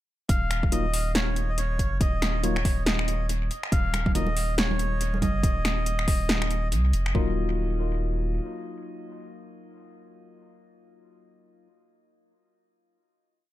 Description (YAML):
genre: deep dubstep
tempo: 140 BPM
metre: 4/4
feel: swing 59% on 16ths, half-time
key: Eb minor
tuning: A4 = 439 Hz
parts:
  - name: melodica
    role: melody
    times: 0.3-6.7 s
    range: Db5 to F5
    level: -33 LUFS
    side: equal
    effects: dub echo
  - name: soft dub sub bass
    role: bass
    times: 0.3-8.4 s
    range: Eb1 to C2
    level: -27 LUFS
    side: equal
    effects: none
  - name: deep house drum kit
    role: drums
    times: 0.3-7.1 s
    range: finger snaps, hi-hat, snare drum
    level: -29 LUFS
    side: equal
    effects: overdrive, analog delay
  - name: electronic kick drum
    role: drums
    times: 0.3-7.3 s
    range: none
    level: -25 LUFS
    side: equal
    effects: overdrive
  - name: percussive organ stab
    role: stabs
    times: 0.7-4.3, 7.1-11.7 s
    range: Gb3 to F4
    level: -34 LUFS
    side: left 3 dB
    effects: chorus, dub echo
  - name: congas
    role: percussion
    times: 3.9-5.3 s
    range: none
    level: -32 LUFS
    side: right 4 dB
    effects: dub echo
room: digital ambience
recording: echo-heavy mix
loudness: -23 LUFS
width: side -14 dB against mid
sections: 0.3-7.2 drop; 7.2-10.6 final chord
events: drop 0.3-7.2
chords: 0.3 Ebmadd9